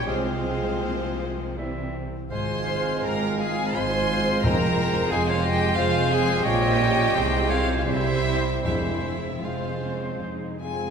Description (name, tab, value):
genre	classical, slow romantic movement for symphony orchestra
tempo	76-92 BPM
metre	3/4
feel	rubato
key	F minor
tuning	A4 = 440 Hz
part	warm chamber violin section	melody	0.0-10.9 s	C5 to C6	-30 LUFS	left 2 dB	none
part	dark clarinet	second line	0.0-10.2 s	C4 to C5	-33 LUFS	left 1 dB	none
part	rich chamber violin section	second line	0.0-10.2 s	C4 to C5	-31 LUFS	equal	none
part	silver concert flute	second line	0.0-10.2 s	Ab4 to Ab5	-32 LUFS	left 1 dB	none
part	mellow bassoon	accompaniment	0.0-10.6 s	F3 to Ab3	-32 LUFS	right 4 dB	none
part	warm symphonic viola section	accompaniment	0.0-10.9 s	E3 to Db4	-34 LUFS	right 2 dB	none
part	mellow French horn section	sustained chords	0.0-10.9 s	G3 to Ab4	-34 LUFS	left 5 dB	none
part	concert harp	arpeggios	0.0-10.9 s	F2 to Db5	-36 LUFS	left 1 dB	none
part	rich chamber double bass section	bass	0.0-10.9 s	F1 to C2	-30 LUFS	right 4 dB	none
part	warm studio cello section	bass	0.0-10.9 s	F2 to C3	-30 LUFS	right 3 dB	none
part	clear oboe	second line	0.1-10.6 s	C5 to F5	-35 LUFS	equal	none
part	timpani	percussion	4.4-9.8 s	F2	-30 LUFS	equal	none
room	wet recital hall reverb, RT60 1.6 s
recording	recorded in a church or concert hall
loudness	-22 LUFS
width	side -6 dB against mid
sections	0.0-10.9 A section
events	none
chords	0.1 Fm/C; 1.6 C; 2.3 Fm/Ab; 4.4 Fm; 6.5 Bbm; 7.2 Fm/C; 7.9 C; 8.6 Fm